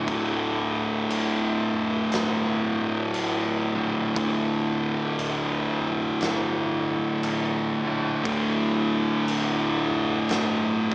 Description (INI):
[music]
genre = stoner and doom metal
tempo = 59 BPM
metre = 4/4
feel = swing 61% on 8ths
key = unclear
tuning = A4 = 441 Hz
[part]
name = deep rumbling drone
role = sustained chords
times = 0.0-10.9 s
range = D3 to E4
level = -32 LUFS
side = equal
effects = built-in reverb
[part]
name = thick fuzz guitar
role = riff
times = 0.0-10.9 s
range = D2 to D3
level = -26 LUFS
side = equal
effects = distortion
[part]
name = thick fuzz guitar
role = riff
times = 0.0-10.9 s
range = D2 to D3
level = -29 LUFS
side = right 1 dB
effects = distortion
[part]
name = overdriven picked electric bass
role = bass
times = 0.1-10.9 s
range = D1 to Bb1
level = -40 LUFS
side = equal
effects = none
[part]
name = oversized low-tuned drum kit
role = drums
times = 0.1-10.9 s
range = crash cymbal, kick drum, snare drum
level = -31 LUFS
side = equal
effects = none
[sound]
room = moderate large studio reverb, RT60 0.9 s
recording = small speaker sound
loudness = -22 LUFS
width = side -27 dB against mid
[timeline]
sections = 0.0-10.9 A section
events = none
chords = 0.0 D5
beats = | 0.07 1.10 2.12 3.14 | 4.16 5.18 6.20 7.22 | 8.24 9.27 10.29